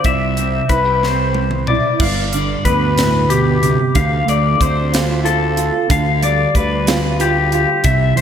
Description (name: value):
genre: math rock and midwest emo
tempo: 62 BPM (dotted quarters)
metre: 6/8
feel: straight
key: unclear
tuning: A4 = 439 Hz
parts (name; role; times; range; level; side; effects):
- mellow electric guitar; accompaniment; 0.0-8.2 s; G2 to G4; -19 LUFS; right 5 dB; analog chorus
- electric guitar through a small old amp; arpeggios; 0.0-8.2 s; G4 to F5; -17 LUFS; left 5 dB; lush chorus, ping-pong delay
- fuzz fingered electric bass; bass; 0.0-8.2 s; G1 to D2; -20 LUFS; equal; overdrive
- crisp fusion drum kit; drums; 0.0-8.2 s; crash cymbal, hi-hat, kick drum, snare drum, toms; -20 LUFS; equal; none
room: wet lush hall reverb, RT60 1.9 s, small room ambience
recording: dreamy mix soaked in reverb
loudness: -13 LUFS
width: side -8 dB against mid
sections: 0.0-2.0 A section; 2.0-8.2 B section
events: drum fill 1.0-2.0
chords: 0.1 Cmaj7; 2.0 G7; 4.0 Dm7; 5.9 G7/D